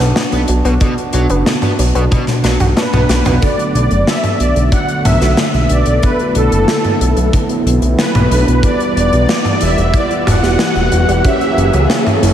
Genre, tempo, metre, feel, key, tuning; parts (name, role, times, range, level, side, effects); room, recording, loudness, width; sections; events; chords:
synthwave; 92 BPM; 4/4; straight; A4 = 439 Hz
warm analog pad; sustained chords; 0.0-12.3 s; D3 to F#5; -19 LUFS; right 2 dB; chorus, sidechain pumping
analog pluck; arpeggios; 0.0-12.3 s; C#3 to F#4; -25 LUFS; left 1 dB
fat analog bass; bass; 0.0-12.3 s; E1 to C#2; -14 LUFS; equal
gated 80s drum kit; drums; 0.0-12.3 s; hi-hat, snare drum, toms; -18 LUFS; left 1 dB
biting overdriven guitar; riff; 0.2-3.3 s; B2 to B3; -23 LUFS; equal; analog chorus, vintage 12-bit sampler grit, analog delay
kick drum; drums; 0.8-11.4 s; -16 LUFS; equal
soft supersaw; melody; 2.8-11.9 s; A4 to F#5; -18 LUFS; equal; analog delay
FM electric piano with soft pad layer; stabs; 3.4-11.4 s; B3 to C#5; -24 LUFS; right 2 dB; chorus, phaser, cassette tape, low-pass filter, analog delay
riser; sound effects; 6.3-12.3 s; -23 LUFS; right 1 dB
moderate plate reverb, RT60 3.4 s; dreamy mix soaked in reverb; -11 LUFS; side -10 dB against mid
0.0-3.4 A section; 3.4-12.3 B section
drum fill 2.1-3.4; filter sweep on FM electric piano 3.4-12.3; riser 6.3-12.3
0.0 Bm; 3.4 Bm7; 8.6 Emadd9; 11.2 F#7